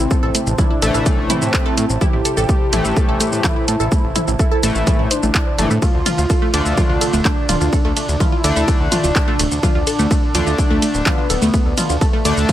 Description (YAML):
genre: melodic techno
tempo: 126 BPM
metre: 4/4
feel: straight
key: A minor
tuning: A4 = 440 Hz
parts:
  - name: fat analog lead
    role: melody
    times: 0.0-12.5 s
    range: A3 to G4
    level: -23 LUFS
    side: equal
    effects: phaser, sidechain pumping, digital delay
  - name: dark analog pad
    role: sustained chords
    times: 0.0-12.5 s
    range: E4 to A5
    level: -29 LUFS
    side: equal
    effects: chorus, sidechain pumping
  - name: wide unison pluck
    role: arpeggios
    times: 0.0-12.5 s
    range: A3 to C5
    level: -23 LUFS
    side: right 1 dB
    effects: sidechain pumping, tape echo
  - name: fat analog bass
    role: bass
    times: 0.0-12.4 s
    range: D1 to A2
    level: -20 LUFS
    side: equal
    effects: sidechain pumping
  - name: swarming drone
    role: drone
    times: 0.1-12.5 s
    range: A2 to C3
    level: -33 LUFS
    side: right 1 dB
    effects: none
  - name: electronic kick drum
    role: drums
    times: 0.1-12.5 s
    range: none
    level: -17 LUFS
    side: equal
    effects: overdrive
  - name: punchy analog drum machine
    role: drums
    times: 0.1-12.5 s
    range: handclaps, hi-hat, ride cymbal, shaker, toms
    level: -22 LUFS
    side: equal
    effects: sidechain pumping on hats, sidechain pumping on perc, sidechain pumping on toms, sidechain pumping on cymbals
  - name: sync-sweep polysynth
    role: stabs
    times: 0.8-12.5 s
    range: A2 to D4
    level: -24 LUFS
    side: left 2 dB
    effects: chorus, sidechain pumping, tape echo
room: little or no reverb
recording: none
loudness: -14 LUFS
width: side -12 dB against mid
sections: 0.0-12.5 A section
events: none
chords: 0.0 Am; 5.8 Dm